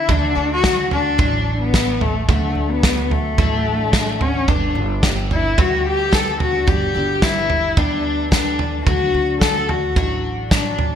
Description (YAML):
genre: indie folk with a building arrangement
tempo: 110 BPM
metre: 4/4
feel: straight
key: D major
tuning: A4 = 437 Hz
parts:
  - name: dark cello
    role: melody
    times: 0.0-11.0 s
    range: A3 to A4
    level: -20 LUFS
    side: left 3 dB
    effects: ping-pong delay
  - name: picked twelve-string acoustic guitar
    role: accompaniment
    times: 0.1-11.0 s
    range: D3 to A4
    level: -27 LUFS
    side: left 2 dB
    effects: analog chorus
  - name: upright bass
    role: bass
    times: 0.1-11.0 s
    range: G1 to D2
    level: -25 LUFS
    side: right 1 dB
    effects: none
  - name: loose indie drum kit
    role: drums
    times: 0.1-10.9 s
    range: kick drum, snare drum, toms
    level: -19 LUFS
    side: right 2 dB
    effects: gated reverb
room: light reverb, studio reverb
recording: bright 1980s-style digital production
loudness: -16 LUFS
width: side -8 dB against mid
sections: 0.1-11.0 A section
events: none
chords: 0.1 D; 4.5 Gadd9; 8.9 D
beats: | 0.10 0.65 1.19 1.74 | 2.29 2.84 3.39 3.94 | 4.48 5.03 5.58 6.13 | 6.68 7.22 7.77 8.32 | 8.87 9.42 9.96 10.51